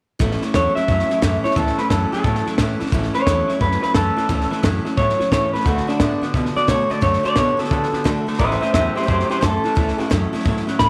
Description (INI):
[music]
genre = rockabilly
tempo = 176 BPM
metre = 4/4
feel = swing 64% on 8ths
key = A major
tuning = A4 = 438 Hz
[part]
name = picked steel-string acoustic guitar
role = accompaniment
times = 0.2-10.9 s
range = A2 to F#4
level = -29 LUFS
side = equal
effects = none
[part]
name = electric guitar through a small old amp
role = riff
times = 0.2-10.9 s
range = A2 to B3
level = -28 LUFS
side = equal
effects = none
[part]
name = upright bass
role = bass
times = 0.2-10.9 s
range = A1 to D3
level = -26 LUFS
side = equal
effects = none
[part]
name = compact cocktail drum kit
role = drums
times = 0.2-10.9 s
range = hi-hat, kick drum, snare drum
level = -25 LUFS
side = equal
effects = none
[part]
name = electric guitar through a small old amp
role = melody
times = 0.6-10.9 s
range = D4 to B5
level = -23 LUFS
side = equal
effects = tape echo
[sound]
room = light reverb, small room reverb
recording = none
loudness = -19 LUFS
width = mono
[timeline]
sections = 0.2-10.9 A section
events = none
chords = 0.2 A; 5.7 D; 8.4 A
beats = | 0.20 0.54 0.88 1.22 | 1.56 1.90 2.24 2.58 | 2.93 3.27 3.61 3.95 | 4.29 4.63 4.97 5.32 | 5.66 6.00 6.34 6.68 | 7.03 7.37 7.71 8.05 | 8.40 8.74 9.08 9.42 | 9.77 10.11 10.45 10.80